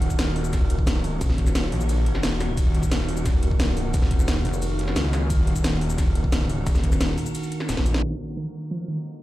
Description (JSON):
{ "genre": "dark technical drum and bass", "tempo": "176 BPM", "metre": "4/4", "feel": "straight", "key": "Eb minor", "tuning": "A4 = 440 Hz", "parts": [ { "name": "metallic inharmonic drone", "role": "sustained chords", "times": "0.0-9.2 s", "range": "Eb3 to F5", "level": "-30 LUFS", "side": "equal", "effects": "chorus, built-in reverb, phaser, vintage 12-bit sampler grit, sidechain pumping" }, { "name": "wide detuned saw bass", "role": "bass", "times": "0.0-8.0 s", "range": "Eb1 to Db2", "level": "-24 LUFS", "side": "equal", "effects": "chorus, overdrive, sidechain pumping" }, { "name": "drum and bass drum kit", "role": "drums", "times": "0.0-9.1 s", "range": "hi-hat, ride cymbal, shaker, snare drum", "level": "-29 LUFS", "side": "equal", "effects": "none" }, { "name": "electronic kick drum", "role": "drums", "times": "0.1-7.8 s", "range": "none", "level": "-22 LUFS", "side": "equal", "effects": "none" }, { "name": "pulsing pluck wobble bass", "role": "bass", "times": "1.2-1.7, 3.9-7.2 s", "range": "Eb1 to F1", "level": "-24 LUFS", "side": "equal", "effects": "chorus" }, { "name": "warbly dusty pluck", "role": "arpeggios", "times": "8.0-9.0 s", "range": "Eb3 to F3", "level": "-30 LUFS", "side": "right 1 dB", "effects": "chorus, sidechain pumping, ping-pong delay" } ], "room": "little or no reverb", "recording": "played on a big sound system in a bare room, large studio reverb, low-pass filter", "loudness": "-21 LUFS", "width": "side -16 dB against mid", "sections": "0.0-8.0 A section; 8.0-9.2 B section", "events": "drop 0.0-8.0; drum fill 7.7-8.0; band accent 7.9; filter sweep on synth arpeggio sound 8.0-9.2; filter sweep 8.0-9.2", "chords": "0.0 Ebm" }